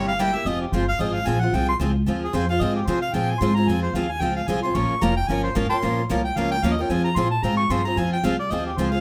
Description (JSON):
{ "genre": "acoustic string swing (jazz manouche)", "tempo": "224 BPM", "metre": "4/4", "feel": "swing 56% on 8ths", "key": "F minor", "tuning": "A4 = 439 Hz", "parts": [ { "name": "warm harmonica", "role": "second line", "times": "0.0-9.0 s", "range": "G4 to Db6", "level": "-28 LUFS", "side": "equal", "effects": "none" }, { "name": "picked steel-string acoustic guitar", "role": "accompaniment", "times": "0.0-9.0 s", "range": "C3 to Bb4", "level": "-29 LUFS", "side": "equal", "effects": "none" }, { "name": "picked steel-string acoustic guitar", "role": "accompaniment", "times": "0.0-8.9 s", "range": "C3 to Bb4", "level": "-31 LUFS", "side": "equal", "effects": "none" }, { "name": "upright bass", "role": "bass", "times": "0.0-9.0 s", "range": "F1 to C3", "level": "-27 LUFS", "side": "equal", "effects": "none" } ], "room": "moderate studio reverb, RT60 0.6 s", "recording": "none", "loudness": "-22 LUFS", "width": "mono", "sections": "0.5-9.0 A section", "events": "harmonica solo 0.0-9.0", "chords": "0.5 Fm" }